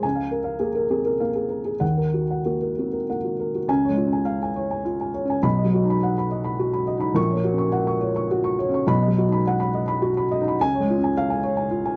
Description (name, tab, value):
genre	neoclassical minimalist piano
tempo	104 BPM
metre	3/4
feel	rubato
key	Db mixolydian from 3.7 s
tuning	A4 = 440 Hz
part	felt-muted upright piano	solo	0.0-12.0 s	Bb1 to Db6	-23 LUFS	equal	none
room	moderate booth ambience, RT60 0.2 s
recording	worn, warbling old tape, cassette tape, warbly pitch drift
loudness	-23 LUFS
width	mono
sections	0.0-3.7 A section; 3.7-12.0 B section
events	none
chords	0.0 Db6; 1.8 Ebm; 3.7 Db; 5.4 Cb; 7.2 Gb/Bb; 8.9 Cb; 10.6 Db